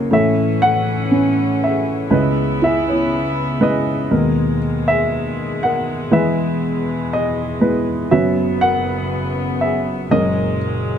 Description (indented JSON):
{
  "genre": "acoustic folk-pop ballad",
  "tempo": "60 BPM",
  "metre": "4/4",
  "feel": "straight",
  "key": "unclear",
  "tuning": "A4 = 440 Hz",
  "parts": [
    { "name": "dark upright piano", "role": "melody", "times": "0.0-11.0 s", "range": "F#1 to F#5", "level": "-17 LUFS", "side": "equal", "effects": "none" },
    { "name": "warm chamber string section", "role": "sustained chords", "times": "0.0-11.0 s", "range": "D#2 to E4", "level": "-24 LUFS", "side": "left 2 dB", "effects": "none" },
    { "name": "felt-muted upright piano", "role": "arpeggios", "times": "0.0-11.0 s", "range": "A3 to A#4", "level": "-22 LUFS", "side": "right 2 dB", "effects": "none" }
  ],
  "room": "light reverb",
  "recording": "close, detailed microphones",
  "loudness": "-15 LUFS",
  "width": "side -8 dB against mid",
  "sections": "0.0-11.0 A section",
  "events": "none",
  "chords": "0.1 A; 2.1 C#m7; 4.1 G#madd9/D#; 6.1 E; 8.1 F#sus4; 10.1 F#add9"
}